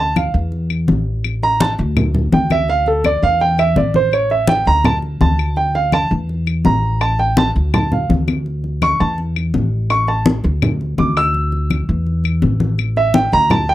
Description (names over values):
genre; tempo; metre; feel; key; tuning
latin, Cuban son and guajira; 166 BPM; 4/4; straight; D harmonic minor; A4 = 440 Hz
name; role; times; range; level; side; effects
warm grand piano; arpeggios; 0.0-13.7 s; A4 to E6; -16 LUFS; right 2 dB; none
upright bass; bass; 0.0-13.7 s; A1 to E2; -18 LUFS; equal; none
claves; percussion; 0.2-13.7 s; none; -25 LUFS; left 21 dB; none
congas; percussion; 0.2-13.7 s; none; -18 LUFS; left 2 dB; none
room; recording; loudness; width
little or no reverb; dry, close 1970s-style studio recording; -14 LUFS; side -14 dB against mid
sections
0.0-13.7 A section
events
grand piano solo 0.0-13.7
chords
0.0 Dsus2; 0.5 A5; 1.2 Bbmaj7/A; 2.0 Dsus2; 3.4 Amadd11; 4.1 A7b9; 4.9 Dsus2; 6.3 A5; 7.0 A7sus4; 7.7 Dsus2; 9.2 A5; 9.9 Aadd11; 10.6 Dsus2; 12.1 A5; 12.8 Gm69/A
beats
0.16 0.52 0.88 | 1.24 1.60 1.97 2.33 | 2.69 3.05 3.41 3.77 | 4.13 4.49 4.85 5.21 | 5.57 5.93 6.29 6.65 | 7.01 7.38 7.74 8.10 | 8.46 8.82 9.18 9.54 | 9.90 10.26 10.62 10.98 | 11.34 11.70 12.06 12.43 | 12.79 13.15 13.51